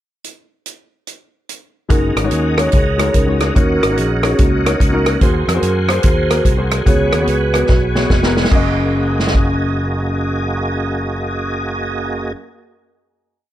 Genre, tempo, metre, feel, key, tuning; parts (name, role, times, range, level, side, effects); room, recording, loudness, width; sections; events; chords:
uptempo gospel; 145 BPM; 4/4; swing 64% on 8ths; F# major; A4 = 440 Hz
natural country drum kit; drums; 0.2-9.5 s; crash cymbal, hi-hat, kick drum, rim click, snare drum; -16 LUFS; equal
vibraphone with medium mallets; melody; 1.9-12.3 s; A#3 to C#5; -20 LUFS; right 1 dB
warm baby grand piano; accompaniment; 1.9-12.4 s; F#2 to D#5; -23 LUFS; left 3 dB
tonewheel organ; sustained chords; 1.9-12.3 s; A#3 to B#5; -23 LUFS; right 2 dB; slow rotary speaker, overdrive, chorus vibrato
fingered electric bass; bass; 1.9-12.3 s; E#1 to F#2; -20 LUFS; equal
studio ambience; -13 LUFS; side -12 dB against mid
0.2-1.9 pickup bar; 1.9-8.5 breakdown; 8.5-11.8 final chord
drum fill 7.7-8.5
0.2 N.C.; 1.9 F#69; 3.6 D#m7; 5.2 G#9/D#; 6.9 C#7sus4; 8.5 F#69